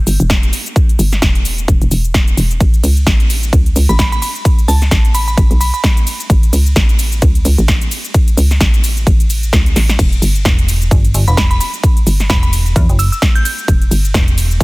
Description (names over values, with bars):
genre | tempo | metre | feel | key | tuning
bass house | 130 BPM | 4/4 | swing 57% on 16ths | E dorian | A4 = 440 Hz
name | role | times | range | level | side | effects
hollow knocking FM bass | bass | 0.0-14.1 s | E1 to C#2 | -13 LUFS | equal | tube saturation, sidechain pumping
big-room dance drum kit | drums | 0.1-14.6 s | cabasa, crash cymbal, hi-hat, ride cymbal, snare drum | -19 LUFS | equal | none
electronic kick drum | drums | 0.3-14.6 s | none | -12 LUFS | equal | none
glassy synth bell | melody | 3.9-5.8, 11.3-13.5 s | A5 to G6 | -22 LUFS | right 1 dB | chorus, dub echo
metallic FM bass | bass | 10.5-14.6 s | E1 to E2 | -13 LUFS | equal | tube saturation, sidechain pumping
room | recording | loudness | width
digital ambience | dense, heavily limited modern master | -10 LUFS | side -23 dB against mid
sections
0.0-14.6 A section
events
drum fill 9.8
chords
0.0 Em; 2.6 A; 10.0 Em